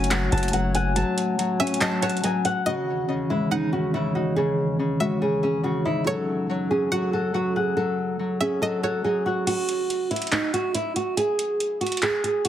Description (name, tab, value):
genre	hip hop, trap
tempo	141 BPM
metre	4/4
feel	half-time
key	unclear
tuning	A4 = 440 Hz
part	flamenco guitar	melody	0.0-12.5 s	D#4 to A5	-25 LUFS	right 1 dB	none
part	Celtic harp	accompaniment	0.0-11.3 s	C#3 to F#5	-27 LUFS	left 4 dB	none
part	dark analog pad	sustained chords	0.0-9.4 s	D#3 to C#5	-30 LUFS	right 2 dB	wide subtle chorus
part	long sustained 808-style bass	bass	0.0-1.0 s	F#1	-25 LUFS	equal	none
part	booming analog drum machine	drums	0.0-2.5, 9.5-12.5 s	crash cymbal, handclaps, hi-hat, kick drum	-27 LUFS	right 1 dB	none
part	string-like resonator pluck	second line	0.1-9.0 s	C#5 to F#5	-31 LUFS	right 1 dB	chorus, digital delay
room	light reverb, digital ambience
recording	heavily compressed radio sound, multiband compression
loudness	-22 LUFS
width	side -11 dB against mid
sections	0.0-2.7 A section; 2.7-9.5 B section; 9.5-12.5 C section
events	kick muted 1.8-2.7, 9.5-12.5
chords	0.0 F#m; 2.7 C#madd9; 6.1 F#m; 9.5 N.C.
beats	0.11 0.54 | 0.96 1.39 1.81 2.24 | 2.66 3.09 3.51 3.94 | 4.37 4.79 5.22 5.64 | 6.07 6.49 6.92 7.34 | 7.77 8.19 8.62 9.04 | 9.47 9.90 10.32 10.75 | 11.17 11.60 12.02 12.45